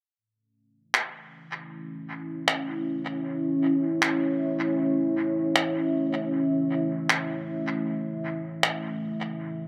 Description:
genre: ambient dub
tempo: 78 BPM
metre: 4/4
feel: swing 56% on 16ths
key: A major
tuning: A4 = 436 Hz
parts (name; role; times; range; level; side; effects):
- deep dark ambient pad; sustained chords; 1.8-9.7 s; A3 to E5; -29 LUFS; equal; chorus, built-in reverb
- electronic finger snaps; drums; 0.9-8.8 s; none; -28 LUFS; equal; overdrive, dub echo
room: light reverb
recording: echo-heavy mix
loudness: -27 LUFS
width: mono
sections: 0.2-9.7 A section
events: filter sweep on ambient pad 0.2-9.7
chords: 0.2 A

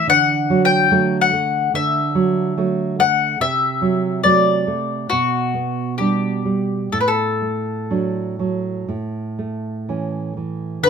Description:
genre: romantic duo for mandolin and classical guitar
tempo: 60-74 BPM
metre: 4/4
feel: rubato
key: D major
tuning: A4 = 440 Hz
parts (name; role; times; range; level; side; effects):
- mandolin; melody; 0.0-10.9 s; F#4 to G5; -18 LUFS; left 5 dB; none
- nylon-string guitar; accompaniment; 0.0-10.9 s; A2 to D4; -20 LUFS; right 4 dB; none
room: light reverb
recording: minimal, uncompressed stereo recording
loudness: -17 LUFS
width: side -6 dB against mid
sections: 0.0-10.8 A section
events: none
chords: 0.1 D; 3.4 D7/C; 5.1 G/B; 6.9 D/A; 8.9 A

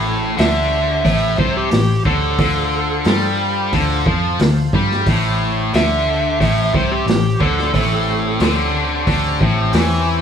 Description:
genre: blues rock power trio and southern rock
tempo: 90 BPM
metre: 4/4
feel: straight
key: unclear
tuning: A4 = 439 Hz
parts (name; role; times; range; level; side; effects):
- overdriven tonewheel organ; sustained chords; 0.0-10.2 s; B#3 to C#5; -29 LUFS; right 3 dB; chorus vibrato, slow rotary speaker
- overdriven electric guitar; riff; 0.0-10.2 s; A2 to G3; -18 LUFS; left 2 dB; none
- vintage muted picked electric bass; bass; 0.0-10.2 s; A1 to G2; -21 LUFS; left 1 dB; none
- overdriven slide guitar; melody; 0.4-8.7 s; G4 to E5; -21 LUFS; right 2 dB; none
- vintage drum kit; drums; 0.4-9.9 s; hi-hat, kick drum, snare drum; -20 LUFS; right 1 dB; none
room: moderate studio ambience, RT60 0.5 s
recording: band playing live in one room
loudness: -14 LUFS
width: side -8 dB against mid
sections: 0.0-10.2 A section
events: none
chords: 0.0 A7#9; 2.4 Dm7; 5.1 A7#9

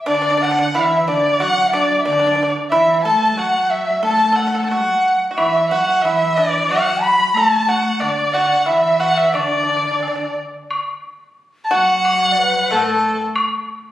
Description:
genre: chinese traditional, Chinese chamber ensemble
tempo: 91 BPM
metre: 2/4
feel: rubato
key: D gong mode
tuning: A4 = 439 Hz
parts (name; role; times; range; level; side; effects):
- large dizi; second line; 0.0-13.2 s; A4 to B5; -21 LUFS; left 3 dB; none
- warm erhu; melody; 0.1-13.2 s; A4 to B5; -17 LUFS; equal; none
- dark cello; second line; 0.1-13.2 s; A2 to A3; -26 LUFS; equal; none
- pipa; second line; 0.1-13.2 s; A3 to A4; -22 LUFS; right 2 dB; none
- woodblock; percussion; 5.4-13.5 s; none; -25 LUFS; left 1 dB; none
room: wet recital hall reverb, RT60 1.4 s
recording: recorded on a phone in the room, studio reverb, compression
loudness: -14 LUFS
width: side -13 dB against mid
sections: 0.1-10.7 A section; 10.7-13.9 B section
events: none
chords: none

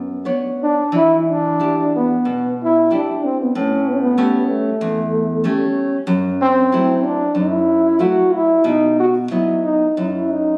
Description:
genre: fado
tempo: 93 BPM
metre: 4/4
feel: rubato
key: E minor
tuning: A4 = 440 Hz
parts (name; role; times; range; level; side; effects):
- breathy trombone; melody; 0.0-10.6 s; A3 to F#4; -18 LUFS; equal; none
- nylon-string guitar; accompaniment; 0.0-10.6 s; E2 to D#5; -23 LUFS; equal; none
room: moderate recital hall reverb, RT60 1.3 s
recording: recorded on a phone in the room, club reverb, compression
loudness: -17 LUFS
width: mono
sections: 0.9-10.6 A section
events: none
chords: 0.0 Bmadd9; 0.9 Em7; 3.5 A7; 6.1 F#m7b5; 8.6 B

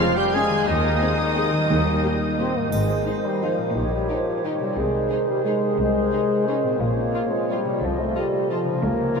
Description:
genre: classical, orchestral ballroom waltz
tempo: 177 BPM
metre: 3/4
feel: uneven beats, rubato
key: Ab major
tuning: A4 = 439 Hz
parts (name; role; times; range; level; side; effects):
- dark symphonic violin section; melody; 0.0-9.2 s; C5 to Ab6; -34 LUFS; equal; none
- mellow clarinet; second line; 0.0-9.2 s; Eb4 to Bb4; -33 LUFS; right 4 dB; none
- mellow flute section; second line; 0.0-9.2 s; C5 to Ab5; -32 LUFS; right 2 dB; none
- rich symphonic violin section; second line; 0.0-9.2 s; F4 to Ab5; -36 LUFS; right 1 dB; none
- warm oboe; second line; 0.0-2.6 s; Eb4 to Ab4; -31 LUFS; left 3 dB; none
- rich symphonic viola section; accompaniment; 0.0-9.2 s; Bb3 to Ab4; -35 LUFS; left 2 dB; none
- bright trombone section; sustained chords; 0.0-2.5 s; none; barely audible; none; none
- mellow French horn section; sustained chords; 0.0-9.2 s; Eb3 to Db4; -24 LUFS; equal; none
- concert harp; arpeggios; 0.0-9.2 s; Ab2 to Bb4; -30 LUFS; left 1 dB; none
- warm trumpet section; stabs; 0.0-2.5 s; Eb4 to Ab4; -31 LUFS; right 2 dB; none
- rich symphonic cello section; bass; 0.7-9.1 s; C2 to C3; -31 LUFS; equal; none
- rich symphonic double bass section; bass; 0.7-9.1 s; Ab1 to Eb2; -28 LUFS; equal; none
- timpani; percussion; 1.7-3.2 s; Ab2 to Eb3; -29 LUFS; right 1 dB; none
- dark bassoon; accompaniment; 2.7-9.2 s; Eb3 to F3; -30 LUFS; left 3 dB; none
- triangle; percussion; 2.7-3.4 s; none; -43 LUFS; right 8 dB; none
room: wet huge ambient reverb, RT60 7.2 s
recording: in a vast, echoing space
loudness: -20 LUFS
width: side -5 dB against mid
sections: 0.0-2.7 A section; 2.7-9.2 B section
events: none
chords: 0.0 Db; 0.7 Ab/Eb; 2.7 Ab; 3.7 Eb7/Bb; 4.8 Ab/C; 6.8 Bbm; 7.8 F7/C

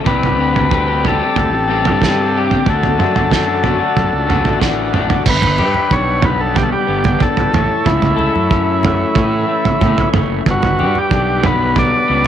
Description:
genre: psychedelic rock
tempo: 92 BPM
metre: 4/4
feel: straight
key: unclear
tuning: A4 = 440 Hz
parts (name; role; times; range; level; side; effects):
- tonewheel organ; sustained chords; 0.0-12.3 s; C4 to D6; -26 LUFS; right 11 dB; slow rotary speaker
- electric guitar through a small old amp; riff; 0.0-12.3 s; G2 to A4; -19 LUFS; left 10 dB; phaser
- overdriven combo organ; melody; 0.1-12.3 s; E4 to D5; -17 LUFS; left 1 dB; tape echo
- fuzz fingered electric bass; bass; 0.1-12.3 s; F#1 to A2; -20 LUFS; equal; overdrive
- cloth-damped thuddy drum kit; drums; 0.1-11.9 s; crash cymbal, kick drum, snare drum, toms; -17 LUFS; right 4 dB; none
- congas; percussion; 5.4-12.3 s; none; -26 LUFS; right 5 dB; none
room: light reverb, small room reverb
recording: 1960s-style stereo with parts hard left and right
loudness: -12 LUFS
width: side -10 dB against mid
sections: 0.0-5.3 A section; 5.3-12.3 B section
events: none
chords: 0.1 Csus2; 2.7 D; 5.3 G; 7.5 A; 10.5 G

